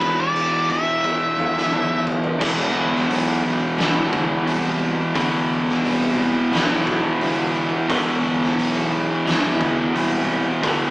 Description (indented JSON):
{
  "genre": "stoner and doom metal",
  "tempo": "88 BPM",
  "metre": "4/4",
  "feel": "straight",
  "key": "unclear",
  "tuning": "A4 = 439 Hz",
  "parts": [
    { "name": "octave-fuzz lead guitar", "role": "melody", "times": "0.0-2.0 s", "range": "B4 to E5", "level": "-20 LUFS", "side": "equal", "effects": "distortion" },
    { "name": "thick fuzz guitar", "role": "riff", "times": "0.0-10.9 s", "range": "E2 to E3", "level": "-28 LUFS", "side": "left 1 dB", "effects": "none" },
    { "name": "thick fuzz guitar", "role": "riff", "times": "0.0-10.9 s", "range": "E2 to E3", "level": "-23 LUFS", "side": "right 1 dB", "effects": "distortion" },
    { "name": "fuzz fingered electric bass", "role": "bass", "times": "0.0-10.9 s", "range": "E1 to D2", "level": "-28 LUFS", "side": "equal", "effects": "overdrive" },
    { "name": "oversized low-tuned drum kit", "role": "drums", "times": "0.0-10.8 s", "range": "crash cymbal, hi-hat, kick drum, snare drum, toms", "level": "-24 LUFS", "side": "equal", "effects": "none" },
    { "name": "overdriven electric guitar", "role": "riff", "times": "2.4-10.9 s", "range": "E2 to E3", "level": "-22 LUFS", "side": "equal", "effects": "none" }
  ],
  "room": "moderate studio reverb, RT60 0.7 s",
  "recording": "rough rehearsal-room recording, small speaker sound",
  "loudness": "-18 LUFS",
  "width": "side -23 dB against mid",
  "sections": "0.0-2.4 A section; 2.4-10.9 B section",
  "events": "drum fill 1.0-2.4",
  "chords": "0.0 E5"
}